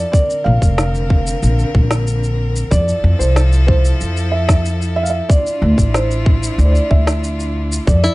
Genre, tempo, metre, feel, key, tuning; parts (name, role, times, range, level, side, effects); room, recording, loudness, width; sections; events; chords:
folktronica; 93 BPM; 4/4; straight; A4 = 439 Hz
felt-muted upright piano; melody; 0.0-8.1 s; C5 to F5; -21 LUFS; right 1 dB; digital delay
clear string quartet; sustained chords; 0.0-8.1 s; D3 to E5; -25 LUFS; equal
upright bass; bass; 0.0-8.1 s; F1 to F2; -15 LUFS; equal
electronic kick drum; drums; 0.1-8.0 s; -14 LUFS; equal; overdrive
electronic shaker and snare drum; drums; 0.1-8.1 s; -23 LUFS; equal; overdrive
bluegrass banjo; arpeggios; 8.0-8.1 s; E4; -16 LUFS; left 1 dB
little or no reverb; dark, warm production, nothing above 10.7 kHz; -13 LUFS; side -20 dB against mid
0.0-8.1 A section
0.1 Bbadd9; 2.7 Fmaj7; 5.3 Dmadd9